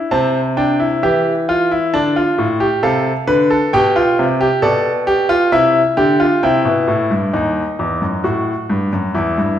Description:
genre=classical, baroque-style 3-part fugue for grand piano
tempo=66 BPM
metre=4/4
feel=straight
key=C major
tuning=A4 = 440 Hz
part: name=bright grand piano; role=solo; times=0.0-9.6 s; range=D#2 to A5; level=-13 LUFS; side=equal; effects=none
room=wet recital hall reverb, RT60 1.4 s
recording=minimal, uncompressed stereo recording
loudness=-13 LUFS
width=side -10 dB against mid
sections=0.1-7.3 A section; 7.3-9.6 B section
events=none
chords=0.1 C; 1.9 Dm7; 3.7 G7/B; 5.5 C; 7.3 D#dim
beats=| 0.10 1.01 1.92 2.82 | 3.73 4.62 5.52 6.42 | 7.33 8.24 9.14

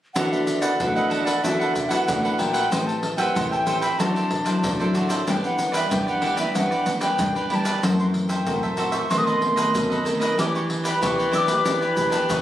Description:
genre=samba and choro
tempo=94 BPM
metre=4/4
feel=straight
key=D major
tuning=A4 = 441 Hz
part: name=wooden flute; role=melody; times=0.1-12.4 s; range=D5 to E6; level=-26 LUFS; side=left 1 dB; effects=plate reverb
part: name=cavaquinho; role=accompaniment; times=0.2-12.4 s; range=D4 to G5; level=-27 LUFS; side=right 3 dB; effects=none
part: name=nylon-string guitar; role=accompaniment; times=0.2-12.4 s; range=F#2 to B4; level=-27 LUFS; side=left 1 dB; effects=none
part: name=nylon-string guitar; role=bass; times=0.2-12.4 s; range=F#2 to G3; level=-27 LUFS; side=equal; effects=none
part: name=egg shaker, surdo and pandeiro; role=percussion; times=0.2-12.4 s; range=none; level=-27 LUFS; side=equal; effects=none
part: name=warm clarinet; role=second line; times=10.4-12.4 s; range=B4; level=-25 LUFS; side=left 2 dB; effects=none
room=moderate studio reverb, RT60 0.5 s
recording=recorded on a phone in the room, studio reverb, compression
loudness=-20 LUFS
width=side -12 dB against mid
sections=0.2-12.4 A section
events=none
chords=0.2 D69; 2.7 Am9; 4.0 D9; 5.3 G6; 7.8 F#m7b5; 9.1 B7b9; 10.4 Em7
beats=| 0.16 0.80 1.44 2.08 | 2.72 3.36 4.00 4.63 | 5.27 5.91 6.55 7.19 | 7.83 8.47 9.11 9.74 | 10.38 11.02 11.66 12.30

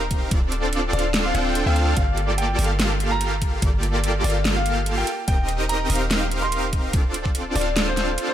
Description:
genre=future bass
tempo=145 BPM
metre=4/4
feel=swing 54% on 16ths, half-time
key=G minor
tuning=A4 = 440 Hz
part: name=clear grand piano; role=melody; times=0.0-8.3 s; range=C5 to C6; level=-29 LUFS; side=left 1 dB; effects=sidechain pumping, ping-pong delay
part: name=supersaw chords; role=riff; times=0.0-8.3 s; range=Bb3 to G5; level=-24 LUFS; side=equal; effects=sidechain pumping
part: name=warm 808-style bass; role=bass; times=0.0-8.2 s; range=D1 to D2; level=-24 LUFS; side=equal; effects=sidechain pumping
part: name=dubstep drum kit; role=drums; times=0.1-8.3 s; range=hi-hat, snare drum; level=-26 LUFS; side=equal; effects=none
part: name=electronic kick drum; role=drums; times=0.1-7.3 s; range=none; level=-21 LUFS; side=equal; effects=none
room=light reverb, digital ambience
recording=none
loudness=-19 LUFS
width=side -11 dB against mid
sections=0.0-8.3 A section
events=none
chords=0.3 Dm7; 2.0 Gm9; 5.1 Eb6; 6.9 Dm7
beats=| 0.31 0.73 1.14 1.55 | 1.97 2.38 2.80 3.21 | 3.62 4.04 4.45 4.87 | 5.28 5.69 6.11 6.52 | 6.93 7.35 7.76 8.18

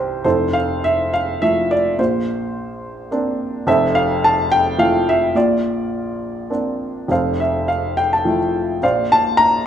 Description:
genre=classical, lyrical solo piano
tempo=105 BPM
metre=3/4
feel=uneven beats, rubato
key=F major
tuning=A4 = 439 Hz
part: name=dark upright piano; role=solo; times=0.0-9.7 s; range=F1 to Bb5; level=-16 LUFS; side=equal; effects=none
room=moderate recital hall reverb, RT60 1.4 s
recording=minimal, uncompressed stereo recording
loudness=-16 LUFS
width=side -9 dB against mid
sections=0.3-9.7 A section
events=upright piano fill 0.0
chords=0.3 Fmaj7; 2.0 Bbadd9; 3.7 Fmaj7; 5.4 Bbadd9; 7.1 Fmaj7; 8.8 Bbadd9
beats=| 0.25 0.85 1.43 | 1.99 2.56 3.11 | 3.67 4.23 4.79 | 5.35 5.93 6.51 | 7.10 7.69 8.27 | 8.83 9.39

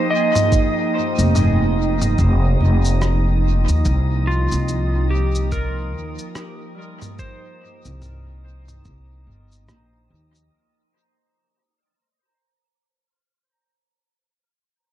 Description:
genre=ambient dub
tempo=72 BPM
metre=4/4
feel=swing 60% on 16ths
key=unclear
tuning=A4 = 440 Hz
part: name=clean lap steel guitar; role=melody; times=0.0-9.7 s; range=F4 to Eb5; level=-26 LUFS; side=right 1 dB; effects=dub echo
part: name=airy breathy pad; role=sustained chords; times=0.0-10.5 s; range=F3 to G5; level=-26 LUFS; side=equal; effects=chorus
part: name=Celtic harp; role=arpeggios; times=0.0-13.5 s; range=G3 to Bb5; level=-47 LUFS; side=right 2 dB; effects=none
part: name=drifting glass-harmonics texture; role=texture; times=0.0-10.5 s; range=Eb4 to Eb5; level=-29 LUFS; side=right 1 dB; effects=chorus, built-in reverb
part: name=lo-fi sampler-style drum kit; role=drums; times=0.4-10.5 s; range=rim click, shaker, toms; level=-26 LUFS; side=right 1 dB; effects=small room ambience, dub echo
part: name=electronic kick drum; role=drums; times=0.5-9.1 s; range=none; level=-21 LUFS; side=equal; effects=small room ambience
part: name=upright bass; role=bass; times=1.2-10.5 s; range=F1 to Eb2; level=-18 LUFS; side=equal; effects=none
room=digital ambience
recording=echo-heavy mix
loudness=-16 LUFS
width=side -12 dB against mid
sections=0.0-10.5 A section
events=fade-out 0.0-10.5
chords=0.0 F9sus4; 3.9 Cm7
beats=| 0.52 1.35 2.19 3.02 | 3.85 4.69 5.52 6.36 | 7.19 8.02 8.86 9.69

